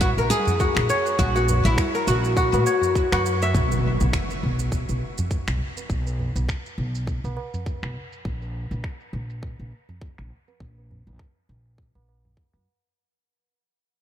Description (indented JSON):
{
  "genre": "organic downtempo",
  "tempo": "102 BPM",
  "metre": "4/4",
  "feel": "swing 57% on 16ths",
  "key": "F# mixolydian",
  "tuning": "A4 = 440 Hz",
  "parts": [
    { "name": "oud", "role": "melody", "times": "0.0-2.9 s", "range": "E4 to G#4", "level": "-25 LUFS", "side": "left 1 dB", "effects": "ping-pong delay" },
    { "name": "kora", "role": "arpeggios", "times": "0.0-4.6 s", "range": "F#4 to E5", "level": "-26 LUFS", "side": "left 1 dB", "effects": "ping-pong delay" },
    { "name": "upright bass", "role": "bass", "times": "0.0-12.6 s", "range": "A#1 to A#2", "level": "-25 LUFS", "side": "equal", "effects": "sidechain pumping" },
    { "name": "electronic kick drum", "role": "drums", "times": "0.0-12.5 s", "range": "none", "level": "-26 LUFS", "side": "equal", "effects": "none" },
    { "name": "electronic shaker and finger snaps", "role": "drums", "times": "0.0-12.9 s", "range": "none", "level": "-34 LUFS", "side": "right 2 dB", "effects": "overdrive, low-pass filter on snare, low-pass filter on perc" },
    { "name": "tabla", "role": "percussion", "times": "0.0-12.6 s", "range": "none", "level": "-32 LUFS", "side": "right 2 dB", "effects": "none" },
    { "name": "impact", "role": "sound effects", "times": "3.5-5.9 s", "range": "none", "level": "-30 LUFS", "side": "equal", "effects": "none" }
  ],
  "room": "wet huge ambient reverb, RT60 8.9 s",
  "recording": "dreamy mix soaked in reverb",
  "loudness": "-21 LUFS",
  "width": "side -10 dB against mid",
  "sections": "0.0-3.5 A section; 3.5-13.0 B section",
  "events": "fade-out 3.5-13.0; impact 3.5-5.9",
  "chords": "0.0 F#7/A#; 3.5 N.C."
}